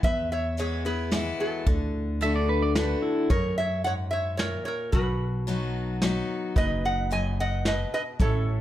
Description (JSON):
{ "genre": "honky-tonk and classic country", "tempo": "110 BPM", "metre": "3/4", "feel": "straight", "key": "unclear", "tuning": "A4 = 440 Hz", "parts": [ { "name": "lap resonator guitar", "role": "melody", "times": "0.0-8.6 s", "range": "F#4 to G#5", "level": "-29 LUFS", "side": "equal", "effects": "plate reverb" }, { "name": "picked steel-string acoustic guitar", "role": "accompaniment", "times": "0.0-8.6 s", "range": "E2 to F#4", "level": "-31 LUFS", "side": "left 4 dB", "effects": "none" }, { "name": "upright bass", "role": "bass", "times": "0.0-8.6 s", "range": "F#1 to F#2", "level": "-29 LUFS", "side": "equal", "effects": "none" }, { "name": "vintage brush drum kit", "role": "drums", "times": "0.0-8.3 s", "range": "hi-hat, kick drum, snare drum", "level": "-27 LUFS", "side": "equal", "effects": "none" }, { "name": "pedal steel guitar", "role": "second line", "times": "2.2-3.3 s", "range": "E4 to E5", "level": "-29 LUFS", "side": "right 4 dB", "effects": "none" }, { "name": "clear grand piano", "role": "accompaniment", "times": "6.6-8.6 s", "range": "C#4 to B4", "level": "-36 LUFS", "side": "right 3 dB", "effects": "none" } ], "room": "light reverb", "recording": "none", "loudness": "-24 LUFS", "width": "side -13 dB against mid", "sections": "0.0-8.6 A section", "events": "none", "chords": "0.0 E; 1.7 D; 3.3 F#; 4.9 B" }